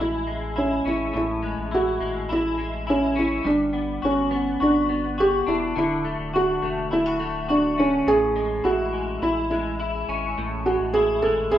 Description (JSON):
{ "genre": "dream pop", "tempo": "104 BPM", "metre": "4/4", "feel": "straight", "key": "A major", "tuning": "A4 = 441 Hz", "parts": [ { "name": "felt-muted upright piano", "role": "melody", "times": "0.0-11.6 s", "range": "C#4 to A4", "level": "-22 LUFS", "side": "right 1 dB", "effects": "plate reverb, digital delay" }, { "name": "clean electric guitar", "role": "arpeggios", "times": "0.0-11.6 s", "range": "A2 to F#4", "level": "-27 LUFS", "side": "left 3 dB", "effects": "ensemble chorus, plate reverb, digital delay" }, { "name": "saturated sub bass", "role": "bass", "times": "0.0-11.6 s", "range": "D1 to A1", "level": "-34 LUFS", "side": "equal", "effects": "none" } ], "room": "wet studio reverb, RT60 0.7 s", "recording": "rough home demo mix", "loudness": "-21 LUFS", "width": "side -11 dB against mid", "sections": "0.0-11.6 A section", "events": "none", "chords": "0.0 Amaj7; 3.4 Gmaj7; 5.8 Dmaj7; 8.1 Amaj7" }